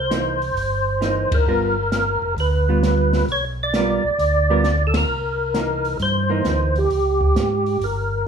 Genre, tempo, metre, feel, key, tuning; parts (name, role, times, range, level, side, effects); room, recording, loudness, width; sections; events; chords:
soul jazz organ trio; 132 BPM; 4/4; swing 67% on 8ths; A4 = 440 Hz
percussive tonewheel organ; melody; 0.0-8.3 s; G4 to D5; -21 LUFS; right 1 dB; slow rotary speaker, chorus vibrato, plate reverb
mellow tonewheel organ; bass; 0.0-8.3 s; F1 to G#2; -22 LUFS; equal; slow rotary speaker
hollow-body jazz guitar; accompaniment; 0.1-6.9 s; E3 to A#4; -24 LUFS; right 5 dB
open jazz drum kit; drums; 0.1-8.0 s; hi-hat, kick drum, ride cymbal, snare drum; -26 LUFS; equal
moderate studio reverb, RT60 0.6 s; small room reverb; -17 LUFS; side -7 dB against mid
0.0-8.3 A section
band accent 1.2, 4.9
0.0 C7#9; 1.5 G7#9; 5.1 C7#9; 6.9 C#5